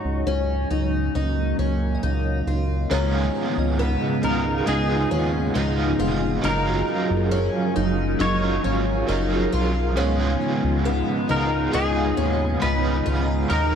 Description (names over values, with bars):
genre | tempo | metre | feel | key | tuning
dream pop | 68 BPM | 4/4 | straight | unclear | A4 = 438 Hz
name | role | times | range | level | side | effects
clean electric guitar | melody | 0.0-13.8 s | F#4 to C#5 | -28 LUFS | left 1 dB | ensemble chorus, digital delay
string machine, cellos | sustained chords | 0.0-13.8 s | C#3 to A#4 | -25 LUFS | equal | phaser, ensemble chorus
picked twelve-string acoustic guitar | arpeggios | 0.0-13.8 s | B3 to E#4 | -27 LUFS | left 2 dB | wide subtle chorus, digital delay
fat analog bass | bass | 0.0-13.8 s | E#1 to D#2 | -24 LUFS | equal | none
shimmering bell with halo | texture | 1.9-13.8 s | G#4 to A#5 | -37 LUFS | right 2 dB | ensemble chorus, digital delay
overdriven semi-hollow guitar | accompaniment | 2.9-13.8 s | C#3 to A#4 | -28 LUFS | right 4 dB | tremolo, analog chorus
room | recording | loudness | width
moderate recital hall reverb, RT60 1.5 s, digital ambience | dark, warm production | -20 LUFS | side -7 dB against mid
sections
0.0-2.9 A section; 2.9-13.8 B section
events
none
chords
0.0 C#sus4; 2.9 C#7; 6.4 F#maj7; 10.0 C#7